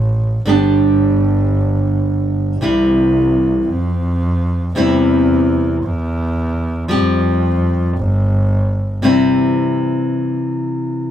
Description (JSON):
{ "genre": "tango", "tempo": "112 BPM", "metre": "4/4", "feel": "rubato", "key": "C major", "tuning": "A4 = 441 Hz", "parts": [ { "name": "clear double bass", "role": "bass", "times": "0.0-9.0 s", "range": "G1 to F2", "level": "-17 LUFS", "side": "equal", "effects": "none" }, { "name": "nylon-string guitar", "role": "accompaniment", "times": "0.5-11.1 s", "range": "C3 to G4", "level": "-14 LUFS", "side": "equal", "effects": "none" } ], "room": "wet studio reverb, RT60 0.5 s", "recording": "band playing live in one room", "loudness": "-13 LUFS", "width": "side -10 dB against mid", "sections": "0.0-11.1 A section", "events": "none", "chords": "0.5 G; 2.6 C; 3.7 N.C.; 4.8 C/E; 5.8 N.C.; 6.9 Fsus2; 8.0 N.C.; 9.0 C", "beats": "| 0.47 1.01 1.54 2.09 | 2.63 3.17 3.70 4.24 | 4.77 5.30 5.83 6.36 | 6.89 7.43 7.96 8.50 | 9.03 9.57 10.11 10.66" }